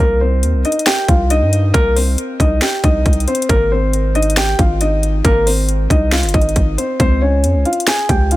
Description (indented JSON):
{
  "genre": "hip hop, trap",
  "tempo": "137 BPM",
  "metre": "4/4",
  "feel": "half-time",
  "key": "C phrygian",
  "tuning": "A4 = 439 Hz",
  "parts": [
    { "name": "dark concert grand piano", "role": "melody", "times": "0.0-8.4 s", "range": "Bb3 to Ab5", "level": "-17 LUFS", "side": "left 1 dB", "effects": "low-pass filter, tape echo" },
    { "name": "long sustained 808-style bass", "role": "bass", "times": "0.0-8.4 s", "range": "G1 to G2", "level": "-16 LUFS", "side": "equal", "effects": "none" },
    { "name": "trap drum kit", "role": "drums", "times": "0.4-8.4 s", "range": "hi-hat, kick drum, snare drum", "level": "-16 LUFS", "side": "equal", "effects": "none" }
  ],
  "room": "little or no reverb",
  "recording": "none",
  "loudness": "-12 LUFS",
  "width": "side -16 dB against mid",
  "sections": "0.0-8.4 A section",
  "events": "none",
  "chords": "0.0 Cm; 3.5 Abadd9; 7.0 Db"
}